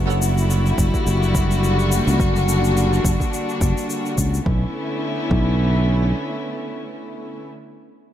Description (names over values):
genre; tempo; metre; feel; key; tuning
sunset chillout; 106 BPM; 4/4; swing 56% on 16ths; B minor; A4 = 440 Hz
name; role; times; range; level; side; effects
dark chamber string section; sustained chords; 0.0-7.5 s; D3 to F#4; -23 LUFS; left 1 dB; none
sustaining fretless electric bass; bass; 0.0-6.1 s; F#1 to C#2; -18 LUFS; equal; lush chorus
shaker; drums; 0.1-4.4 s; none; -31 LUFS; left 4 dB; overdrive
electronic kick drum; drums; 0.8-5.5 s; none; -22 LUFS; equal; overdrive
room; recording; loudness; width
light reverb, digital ambience; none; -17 LUFS; side -11 dB against mid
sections
0.0-4.5 A section; 4.5-6.7 B section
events
filter sweep on fretless electric bass 0.0-4.5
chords
0.0 F#7b9b13; 4.5 Bm11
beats
0.50 1.06 1.63 | 2.19 2.76 3.33 3.89 | 4.46 5.03 5.59 6.16